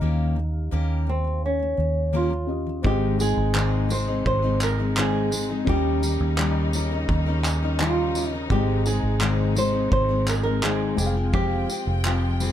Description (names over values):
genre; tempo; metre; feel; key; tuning
acoustic pop; 85 BPM; 4/4; straight; Ab major; A4 = 440 Hz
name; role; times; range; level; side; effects
flamenco guitar; melody; 0.0-12.5 s; C4 to C5; -27 LUFS; right 3 dB; none
felt-muted upright piano; accompaniment; 0.0-12.5 s; Ab3 to G5; -35 LUFS; left 5 dB; none
picked steel-string acoustic guitar; accompaniment; 0.0-12.5 s; Ab2 to Bb4; -27 LUFS; left 5 dB; none
vintage muted fingered electric bass; bass; 0.0-12.5 s; F1 to Eb2; -24 LUFS; right 1 dB; none
clear studio string section; sustained chords; 2.8-12.5 s; C3 to G5; -34 LUFS; left 2 dB; none
loose indie drum kit; drums; 2.8-12.5 s; handclaps, kick drum, tambourine; -28 LUFS; right 1 dB; none
room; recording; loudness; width
little or no reverb; none; -21 LUFS; side -10 dB against mid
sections
0.0-2.8 A section; 2.8-12.5 B section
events
none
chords
0.0 Eb7; 2.8 Ab; 5.7 Eb7; 8.5 Ab; 11.0 Fmadd9